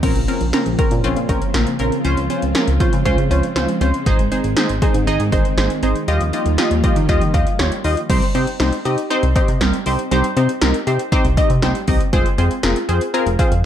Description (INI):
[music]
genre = synth-pop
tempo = 119 BPM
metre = 4/4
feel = straight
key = unclear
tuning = A4 = 437 Hz
[part]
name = funky polysynth comp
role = accompaniment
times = 0.0-13.5 s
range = C4 to Eb5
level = -21 LUFS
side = left 1 dB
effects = chorus
[part]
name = string machine, violas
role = sustained chords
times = 0.0-8.1 s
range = Db3 to F4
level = -25 LUFS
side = equal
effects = ensemble chorus
[part]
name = warbly dusty pluck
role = arpeggios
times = 0.0-13.6 s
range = F3 to F5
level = -24 LUFS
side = right 2 dB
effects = chorus, ping-pong delay
[part]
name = chorused synth bass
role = bass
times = 0.0-13.6 s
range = F1 to Eb3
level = -19 LUFS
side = equal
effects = none
[part]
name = 80s electronic pad drums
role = drums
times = 0.0-13.6 s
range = crash cymbal, hi-hat, kick drum, snare drum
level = -20 LUFS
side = equal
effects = none
[sound]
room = light reverb, digital ambience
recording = dark, warm production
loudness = -15 LUFS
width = side -10 dB against mid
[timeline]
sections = 0.0-8.1 A section; 8.1-13.7 B section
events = none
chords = 0.0 Bbmadd9; 2.0 Dbmaj7; 4.1 Ab; 6.1 Ebadd9; 8.1 Cm; 12.1 Fm